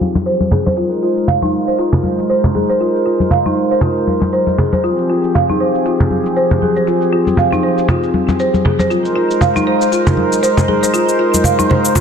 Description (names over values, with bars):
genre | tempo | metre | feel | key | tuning
afro house | 118 BPM | 4/4 | swing 57% on 16ths | unclear | A4 = 440 Hz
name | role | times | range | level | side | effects
warm analog pad | sustained chords | 0.0-12.0 s | F3 to C5 | -17 LUFS | equal | chorus
congas | percussion | 0.0-12.0 s | none | -17 LUFS | equal | none
shaker | drums | 0.2-12.0 s | none | -24 LUFS | left 4 dB | soft clipping on snare
folk marimba with soft mallets | arpeggios | 0.3-12.0 s | Eb4 to F5 | -16 LUFS | equal | low-pass filter, digital delay
room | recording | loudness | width
moderate plate reverb, RT60 1.8 s | dense, heavily limited modern master, low-pass filter | -12 LUFS | side -7 dB against mid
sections
0.0-12.0 A section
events
filter sweep on marimba 0.0-12.0; filter sweep on analog synth pad 0.0-12.0; filter sweep 0.0-12.0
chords
0.0 Fmadd9; 0.8 Ab; 4.8 Fmadd9; 8.9 Ab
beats
0.26 | 0.77 1.28 1.79 2.29 | 2.80 3.31 3.82 4.33 | 4.84 5.35 5.85 6.36 | 6.87 7.38 7.89 8.40 | 8.90 9.41 9.92 10.43 | 10.94 11.45 11.96